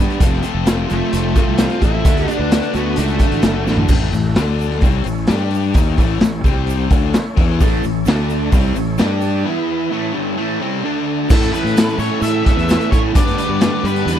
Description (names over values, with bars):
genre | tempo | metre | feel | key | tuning
classic rock | 130 BPM | 4/4 | straight | A mixolydian | A4 = 441 Hz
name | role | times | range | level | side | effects
tonewheel organ | sustained chords | 0.0-14.2 s | G3 to E5 | -31 LUFS | equal | slow rotary speaker, overdrive
crunchy overdriven guitar | riff | 0.0-3.9, 7.6-14.2 s | F2 to G4 | -23 LUFS | right 16 dB | none
overdriven semi-hollow guitar | riff | 0.0-14.2 s | G2 to B4 | -22 LUFS | left 16 dB | none
fuzz fingered electric bass | bass | 0.0-14.2 s | F1 to A2 | -20 LUFS | equal | overdrive
raw garage drum kit | drums | 0.1-14.2 s | crash cymbal, hi-hat, kick drum, snare drum, toms | -16 LUFS | equal | none
tube shaker | percussion | 0.2-14.2 s | none | -40 LUFS | right 14 dB | none
octave-fuzz lead guitar | melody | 0.9-3.6, 11.3-14.2 s | A3 to E5 | -23 LUFS | left 1 dB | distortion
fuzz lead guitar | second line | 0.9-3.6, 11.3-14.2 s | D4 to C5 | -26 LUFS | right 6 dB | distortion
room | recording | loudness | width
little or no reverb | none | -14 LUFS | side -10 dB against mid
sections
0.0-3.9 A section; 3.9-11.3 B section; 11.3-14.2 A section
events
drum fill 3.7; break 9.5-11.3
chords
0.2 Fadd9; 2.1 D; 3.9 A; 4.4 D5; 4.8 A; 5.3 G5; 5.8 A; 6.5 C5; 6.9 A; 8.1 D5; 8.5 A; 9.0 G5; 9.5 E5; 9.9 A; 10.8 D5; 11.3 A; 13.1 G